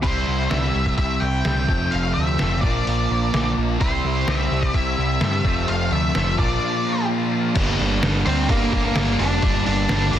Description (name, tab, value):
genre	quiet-loud alternative rock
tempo	128 BPM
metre	4/4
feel	straight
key	G dorian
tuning	A4 = 440 Hz
part	octave-fuzz lead guitar	melody	0.0-10.1 s	Bb3 to G5	-25 LUFS	equal	distortion, digital delay
part	twangy electric guitar	arpeggios	0.0-7.6 s	F2 to F4	-30 LUFS	left 8 dB	ensemble chorus
part	fuzz guitar	riff	0.0-10.2 s	F2 to D4	-24 LUFS	right 1 dB	distortion
part	growling picked electric bass	bass	0.0-10.2 s	F1 to G2	-24 LUFS	equal	overdrive
part	trip hop sampler-style drum kit	drums	0.0-10.2 s	crash cymbal, hi-hat, kick drum, snare drum	-24 LUFS	equal	none
room	light reverb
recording	dense, heavily limited modern master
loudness	-18 LUFS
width	side -10 dB against mid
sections	0.0-7.6 A section; 7.6-10.2 B section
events	none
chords	0.0 C; 1.7 F; 2.6 Bb; 3.8 C; 5.5 F; 6.4 Bb; 7.6 Gm